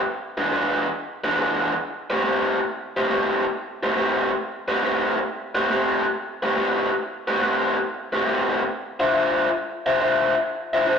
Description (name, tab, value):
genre	blues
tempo	139 BPM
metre	4/4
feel	swing 68% on 8ths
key	A minor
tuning	A4 = 439 Hz
part	raw garage guitar	solo	0.4-11.0 s	E3 to E5	-20 LUFS	equal	overdrive, spring reverb
room	wet stone room reverb, RT60 1.3 s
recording	rough rehearsal-room recording, tube saturation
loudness	-20 LUFS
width	side -6 dB against mid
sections	0.0-1.8 A section; 1.8-11.0 A section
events	none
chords	0.1 E7; 1.8 Am9; 8.7 Dm9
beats	| 0.09 0.52 0.95 1.38 | 1.81 2.25 2.68 3.11 | 3.54 3.97 4.40 4.83 | 5.26 5.69 6.12 6.56 | 6.99 7.42 7.85 8.28 | 8.71 9.14 9.57 10.00 | 10.43 10.86